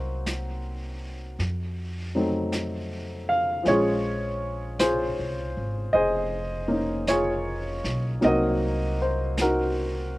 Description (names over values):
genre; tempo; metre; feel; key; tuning
jazz ballad; 53 BPM; 4/4; swing 66% on 8ths; Bb minor; A4 = 441 Hz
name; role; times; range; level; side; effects
warm baby grand piano; accompaniment; 0.0-10.2 s; F3 to F5; -24 LUFS; equal; slapback echo
upright bass; bass; 0.0-10.2 s; F1 to F2; -31 LUFS; equal; none
vintage brush drum kit; drums; 0.3-10.2 s; brushed snare drum, hi-hat, snare drum; -34 LUFS; equal; none
room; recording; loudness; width
little or no reverb; recorded outdoors, with no room sound; -24 LUFS; side -19 dB against mid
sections
0.0-10.2 A section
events
none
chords
0.0 Cm7b5; 1.4 F7b9; 3.7 Bbm9; 8.2 Cm7b5